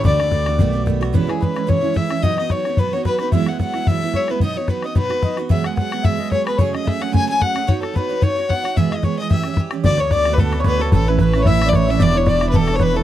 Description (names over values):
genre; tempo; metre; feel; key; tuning
celtic folk, Celtic reel; 221 BPM; 4/4; swing 54% on 8ths; E major, D major from 9.8 s; A4 = 441 Hz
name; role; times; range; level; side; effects
clear fiddle; melody; 0.0-13.0 s; G#4 to G#5; -22 LUFS; left 4 dB; none
hammered dulcimer; second line; 0.0-2.6, 9.8-13.0 s; G4 to E5; -28 LUFS; right 2 dB; none
mellow accordion; second line; 0.0-13.0 s; G#4 to G#5; -27 LUFS; left 2 dB; none
picked steel-string acoustic guitar; accompaniment; 0.0-13.0 s; E2 to C#5; -22 LUFS; right 8 dB; none
upright bass; bass; 0.0-1.1, 9.8-13.0 s; E1 to D2; -20 LUFS; equal; none
bodhran; percussion; 0.0-12.9 s; none; -18 LUFS; left 2 dB; none
room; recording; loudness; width
light reverb; dry, close 1970s-style studio recording; -16 LUFS; side -12 dB against mid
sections
0.0-1.1 A section; 1.1-9.8 B section; 9.8-13.0 C section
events
none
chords
0.0 D; 0.6 B7; 1.1 E6; 2.2 B; 3.3 Eadd9; 4.4 B; 5.5 Eadd9; 6.6 F#madd9; 7.7 Badd9; 8.8 E; 9.3 A7; 9.8 D6; 10.9 A; 12.0 Em7